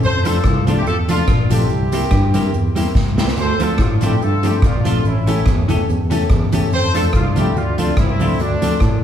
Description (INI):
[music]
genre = ska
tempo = 143 BPM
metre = 4/4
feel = swing 54% on 8ths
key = D minor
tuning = A4 = 440 Hz
[part]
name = warm horn section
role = melody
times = 0.0-9.0 s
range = A3 to C5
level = -22 LUFS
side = right 1 dB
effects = slapback echo
[part]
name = overdriven tine electric piano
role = bass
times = 0.0-9.0 s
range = A1 to A2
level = -19 LUFS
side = equal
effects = fast tremolo
[part]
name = cabasa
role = percussion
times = 0.0-8.9 s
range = none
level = -42 LUFS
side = right 5 dB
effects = none
[part]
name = bright upright piano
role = stabs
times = 0.2-8.9 s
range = C4 to Bb4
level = -24 LUFS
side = left 5 dB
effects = none
[part]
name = clean electric guitar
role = accompaniment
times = 0.3-8.7 s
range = E3 to G4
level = -22 LUFS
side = right 2 dB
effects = none
[part]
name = street-band drum kit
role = drums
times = 0.3-8.9 s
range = hi-hat, kick drum, rim click, snare drum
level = -18 LUFS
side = equal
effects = none
[sound]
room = wet large studio reverb, RT60 1.4 s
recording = band playing live in one room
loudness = -14 LUFS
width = side -9 dB against mid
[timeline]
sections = 0.0-9.0 A section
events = drum fill 3.0-3.4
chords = 0.0 F6; 1.7 C7; 3.4 Dm7; 5.0 A7; 6.7 F6; 8.4 Dm7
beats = | 0.03 0.45 0.86 1.28 | 1.70 2.12 2.54 2.96 | 3.37 3.79 4.21 4.63 | 5.05 5.47 5.88 6.30 | 6.72 7.14 7.56 7.98 | 8.40 8.81